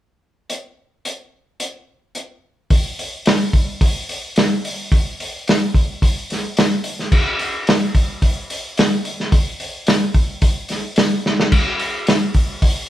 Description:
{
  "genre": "rock",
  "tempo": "109 BPM",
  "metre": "4/4",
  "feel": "straight",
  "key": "none",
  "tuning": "none",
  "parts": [
    { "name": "vintage drum kit", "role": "drums", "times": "0.5-12.8 s", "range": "crash cymbal, hi-hat, kick drum, snare drum", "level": "-16 LUFS", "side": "equal", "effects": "none" }
  ],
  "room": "light reverb",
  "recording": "band playing live in one room",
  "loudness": "-16 LUFS",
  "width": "side -13 dB against mid",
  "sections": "0.5-2.7 A section; 2.7-12.9 B section",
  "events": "drum fill 11.2",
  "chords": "none"
}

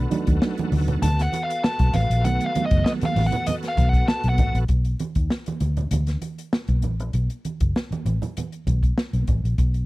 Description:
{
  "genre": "funk",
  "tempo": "98 BPM",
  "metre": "4/4",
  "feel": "straight",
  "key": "B mixolydian",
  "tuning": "A4 = 440 Hz",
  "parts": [
    { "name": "nasal lead guitar with a parked wah", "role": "melody", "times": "0.0-4.6 s", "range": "D#5 to B5", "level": "-26 LUFS", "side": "left 1 dB", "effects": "overdrive" },
    { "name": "bright tonewheel organ", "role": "sustained chords", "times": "0.0-4.6 s", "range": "B3 to A4", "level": "-34 LUFS", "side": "equal", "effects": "slow rotary speaker, overdrive, chorus vibrato" },
    { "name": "reed electric piano", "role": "stabs", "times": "0.0-3.5 s", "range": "D3 to D#4", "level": "-27 LUFS", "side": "right 4 dB", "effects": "fast tremolo" },
    { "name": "vintage muted fingered electric bass", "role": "bass", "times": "0.0-9.8 s", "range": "F#1 to D#2", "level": "-22 LUFS", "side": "equal", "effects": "none" },
    { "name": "swinging big-band drum kit", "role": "drums", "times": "0.1-9.9 s", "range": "hi-hat, kick drum, snare drum", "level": "-24 LUFS", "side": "equal", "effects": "none" },
    { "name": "congas", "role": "percussion", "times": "0.1-9.7 s", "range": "none", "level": "-30 LUFS", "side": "right 4 dB", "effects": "none" }
  ],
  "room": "little or no reverb",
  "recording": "dry, close 1970s-style studio recording",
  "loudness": "-20 LUFS",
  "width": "side -19 dB against mid",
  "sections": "0.0-4.7 A section; 4.7-9.9 B section",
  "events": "lead electric guitar solo 0.0-4.7",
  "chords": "0.0 B7#9; 4.7 Bm7"
}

